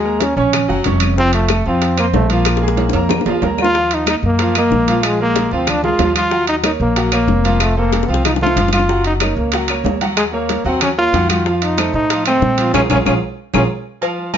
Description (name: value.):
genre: latin, salsa.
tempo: 187 BPM.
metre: 4/4.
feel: straight.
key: Bb minor.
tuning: A4 = 441 Hz.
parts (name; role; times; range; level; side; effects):
bright trombone; melody; 0.0-13.6 s; Ab3 to F4; -17 LUFS; left 1 dB; plate reverb.
bright concert grand piano; accompaniment; 0.0-14.4 s; Eb3 to Db6; -21 LUFS; right 3 dB; none.
upright bass; bass; 0.0-13.7 s; F1 to Bb2; -19 LUFS; equal; none.
congas; percussion; 0.1-14.4 s; none; -25 LUFS; left 1 dB; none.
bongos and cowbell; percussion; 0.2-14.4 s; none; -24 LUFS; left 10 dB; none.
timbales and agogo bells; percussion; 0.2-14.4 s; none; -22 LUFS; right 6 dB; none.
claves; percussion; 0.5-14.4 s; none; -24 LUFS; left 8 dB; none.
room: light reverb.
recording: nothing above 7.5 kHz.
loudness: -13 LUFS.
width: side -9 dB against mid.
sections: 0.0-3.7 A section; 3.7-14.0 B section.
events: drum fill 2.5-3.7, 7.9-8.9, 12.7-14.0; band accent 12.7-14.0.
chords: 0.0 Ebm9; 1.2 F; 2.5 Bb5; 3.7 Ebmadd9; 5.0 Bb7; 6.3 Ebm7; 7.6 F; 8.9 Gb; 10.2 Ebm7; 11.5 F; 12.7 Bb7(no3).